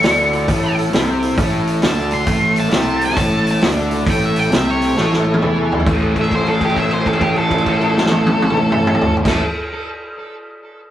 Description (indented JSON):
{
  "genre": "blues rock power trio and southern rock",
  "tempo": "134 BPM",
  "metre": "4/4",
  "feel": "swing 66% on 8ths",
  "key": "A major",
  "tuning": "A4 = 439 Hz",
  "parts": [
    { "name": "octave-fuzz lead guitar", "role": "melody", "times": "0.0-9.4 s", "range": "G4 to C#6", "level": "-21 LUFS", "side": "equal", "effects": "distortion, digital delay" },
    { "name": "overdriven tonewheel organ", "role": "sustained chords", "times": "0.0-9.4 s", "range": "A3 to A4", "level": "-25 LUFS", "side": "right 1 dB", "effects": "slow rotary speaker, chorus vibrato" },
    { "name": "distorted electric guitar", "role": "riff", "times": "0.0-9.4 s", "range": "A2 to E4", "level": "-19 LUFS", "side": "left 1 dB", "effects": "distortion" },
    { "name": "fuzz fingered electric bass", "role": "bass", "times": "0.0-9.4 s", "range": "A1 to E2", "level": "-21 LUFS", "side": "equal", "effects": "overdrive" },
    { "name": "vintage drum kit", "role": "drums", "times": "0.0-9.4 s", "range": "crash cymbal, hi-hat, kick drum, snare drum, toms", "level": "-19 LUFS", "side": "equal", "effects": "none" }
  ],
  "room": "moderate small room reverb, RT60 0.5 s",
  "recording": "rough rehearsal-room recording, warm saturation",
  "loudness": "-14 LUFS",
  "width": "side -12 dB against mid",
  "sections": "0.0-5.9 A section; 5.9-9.5 B section",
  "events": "drum fill 5.0-5.9; held note 5.9-9.2",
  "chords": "0.0 A5; 5.9 A"
}